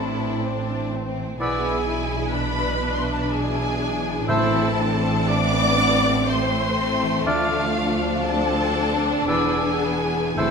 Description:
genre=classical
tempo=52-65 BPM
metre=3/4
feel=rubato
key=A minor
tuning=A4 = 440 Hz
part: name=warm studio violin section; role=melody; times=0.0-10.5 s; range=F5 to D6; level=-27 LUFS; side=left 1 dB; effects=none
part: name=rich studio violin section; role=second line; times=0.0-10.5 s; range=A3 to E4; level=-27 LUFS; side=left 3 dB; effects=none
part: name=warm studio viola section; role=accompaniment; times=0.0-10.5 s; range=F4 to D5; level=-28 LUFS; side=right 1 dB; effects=none
part: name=mellow French horn section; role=sustained chords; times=0.0-10.5 s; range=E3 to D4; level=-28 LUFS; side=left 2 dB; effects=none
part: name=concert harp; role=arpeggios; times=0.0-10.5 s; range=A2 to E5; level=-32 LUFS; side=left 5 dB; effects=none
part: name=dark studio cello section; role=bass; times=0.0-10.5 s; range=D2 to B2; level=-28 LUFS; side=right 3 dB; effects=none
part: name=warm studio double bass section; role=bass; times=0.0-10.5 s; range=E1 to D2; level=-30 LUFS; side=right 5 dB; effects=none
part: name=mellow clarinet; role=second line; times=1.4-10.5 s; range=D4 to E4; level=-34 LUFS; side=right 1 dB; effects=none
part: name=silver concert flute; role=second line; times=1.4-10.5 s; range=E6 to F6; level=-30 LUFS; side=left 1 dB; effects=none
part: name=warm oboe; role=second line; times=1.4-10.5 s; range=C5 to D5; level=-29 LUFS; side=right 1 dB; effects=none
part: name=warm bassoon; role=accompaniment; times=1.4-10.5 s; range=A3 to B3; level=-31 LUFS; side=right 1 dB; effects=none
part: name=timpani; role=percussion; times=4.3-5.8, 10.4-10.5 s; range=A2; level=-30 LUFS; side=right 3 dB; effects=none
room=wet recital hall reverb, RT60 1.7 s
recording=minimal, uncompressed stereo recording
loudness=-19 LUFS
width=side -5 dB against mid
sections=0.0-10.5 A section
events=none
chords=0.0 Am; 1.4 E7/B; 4.3 Am; 7.3 Dm; 9.3 E7

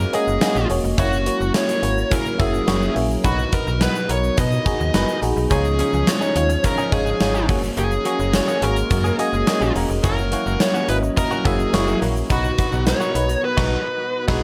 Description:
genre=1980s-style pop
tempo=106 BPM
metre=4/4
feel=straight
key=F# major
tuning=A4 = 441 Hz
part: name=dark smooth lead guitar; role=melody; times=0.0-14.4 s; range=F#4 to D#5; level=-26 LUFS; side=equal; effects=overdrive
part: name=FM electric piano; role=accompaniment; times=0.0-14.4 s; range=B2 to E5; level=-26 LUFS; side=equal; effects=chorus, phaser
part: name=glassy FM pad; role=sustained chords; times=0.0-14.4 s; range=E#3 to A#4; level=-33 LUFS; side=equal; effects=none
part: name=slap-like FM bass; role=bass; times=0.0-14.4 s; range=E1 to B2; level=-25 LUFS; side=equal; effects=none
part: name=gated 80s drum kit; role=drums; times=0.1-14.4 s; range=crash cymbal, hi-hat, kick drum, snare drum, tambourine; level=-25 LUFS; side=equal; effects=none
part: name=egg shaker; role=percussion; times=0.3-13.4 s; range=none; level=-44 LUFS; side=equal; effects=none
part: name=direct-recorded clean electric guitar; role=riff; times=5.5-14.4 s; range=E3 to G#4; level=-32 LUFS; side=equal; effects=lush chorus
room=light reverb, small room ambience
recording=none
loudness=-20 LUFS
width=mono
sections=0.0-14.4 A section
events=band accent 13.4-14.4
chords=0.0 F#add9; 1.0 F#7; 3.2 B; 5.5 C#add9; 7.5 F#add9; 10.0 F#7; 12.3 B

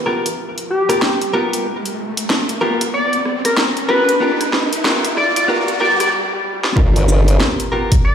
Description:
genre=glitch hop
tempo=94 BPM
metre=4/4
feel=swing 61% on 16ths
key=unclear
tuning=A4 = 440 Hz
part: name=direct-recorded clean electric guitar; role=stabs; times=0.0-7.9 s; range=B3 to A#4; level=-21 LUFS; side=equal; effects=vintage 12-bit sampler grit, sidechain pumping, low-pass filter, digital delay
part: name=riser, swell and impact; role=sound effects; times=0.0-8.1 s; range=none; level=-22 LUFS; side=equal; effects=none
part: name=drum and bass drum kit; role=drums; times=0.1-8.0 s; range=hi-hat, rim click, shaker, snare drum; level=-21 LUFS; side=equal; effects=overdrive
part: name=sync lead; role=melody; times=0.7-8.1 s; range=G4 to D5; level=-19 LUFS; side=left 1 dB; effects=chorus, digital delay
part: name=formant-sweep wobble bass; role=bass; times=6.8-7.4 s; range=G1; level=-13 LUFS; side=equal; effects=chorus
part: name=electronic kick drum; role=drums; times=6.8-8.0 s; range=none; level=-13 LUFS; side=equal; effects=overdrive
room=wet lush hall reverb, RT60 2.5 s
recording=played on a big sound system in a bare room, large studio reverb, high-pass filter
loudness=-14 LUFS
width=side -8 dB against mid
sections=0.0-6.8 A section; 6.8-8.1 B section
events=build-up 0.0-6.8; riser 0.0-6.1; swell 5.5-6.8; stop 6.1-6.8; drum fill 6.4-6.8; drop 6.8-8.1; impact 6.8-8.1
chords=0.0 G7#9

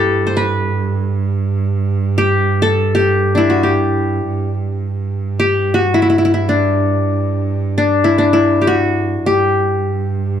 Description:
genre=Turkish makam ensemble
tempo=free time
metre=none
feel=none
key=G makam rast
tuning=A4 = 440 Hz
part: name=qanun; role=melody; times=0.0-10.4 s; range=D4 to C5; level=-14 LUFS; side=left 2 dB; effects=plate reverb
part: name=clear cello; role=drone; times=0.0-10.4 s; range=G2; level=-18 LUFS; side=right 4 dB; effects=none
room=moderate small room ambience, RT60 0.5 s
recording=dark, warm production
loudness=-13 LUFS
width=side -9 dB against mid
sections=0.0-10.4 A section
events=none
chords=none

